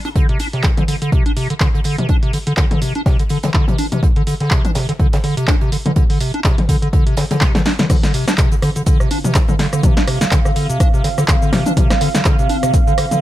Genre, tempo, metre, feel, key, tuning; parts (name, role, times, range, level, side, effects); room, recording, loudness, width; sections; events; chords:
acid house; 124 BPM; 4/4; swing 56% on 16ths; D minor pentatonic; A4 = 436 Hz
acid bass, square; riff; 0.1-13.2 s; C3 to D4; -19 LUFS; equal; overdrive, wide subtle chorus
deep reggae drum kit; drums; 0.1-13.1 s; hi-hat, snare drum; -30 LUFS; right 2 dB; high-pass filter on hats, high-pass filter on snare, high-pass filter on room
electronic kick drum; drums; 0.2-12.8 s; -15 LUFS; equal
punchy analog drum machine; drums; 0.3-13.2 s; cabasa, crash cymbal, handclaps, hi-hat, rim click, snare drum, toms; -21 LUFS; left 1 dB
dark analog pad; sustained chords; 7.9-13.2 s; D3 to F5; -22 LUFS; right 4 dB; chorus, phaser, vintage 12-bit sampler grit, sidechain pumping
light reverb; -13 LUFS; side -14 dB against mid
0.0-7.9 A section; 7.9-13.2 B section
drum fill 7.4-7.9; drop 7.9-13.2
0.0 Csus2; 7.9 Dm7